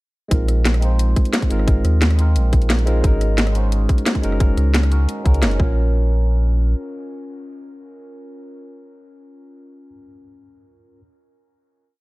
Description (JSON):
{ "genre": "liquid drum and bass", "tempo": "176 BPM", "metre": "4/4", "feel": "straight", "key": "Bb minor", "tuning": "A4 = 440 Hz", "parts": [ { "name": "tine electric piano", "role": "accompaniment", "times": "0.3-11.0 s", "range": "Ab3 to C5", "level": "-26 LUFS", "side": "equal", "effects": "phaser, dub echo" }, { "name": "warm sub bass", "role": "bass", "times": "0.3-6.7 s", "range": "Gb1 to Eb2", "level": "-16 LUFS", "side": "equal", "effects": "none" }, { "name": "drum and bass drum kit", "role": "drums", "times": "0.3-5.6 s", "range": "hi-hat, rim click, snare drum", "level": "-23 LUFS", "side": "equal", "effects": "overdrive" }, { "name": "electronic kick drum", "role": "drums", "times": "0.3-5.7 s", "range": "none", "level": "-17 LUFS", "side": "equal", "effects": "overdrive" } ], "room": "digital ambience", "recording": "dark, warm production", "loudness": "-15 LUFS", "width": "side -21 dB against mid", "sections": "0.3-5.8 drop; 5.8-8.5 final hit", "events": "drop 0.3-5.8", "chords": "0.3 Bb9sus4; 3.0 Ab9sus4; 5.6 Bbm" }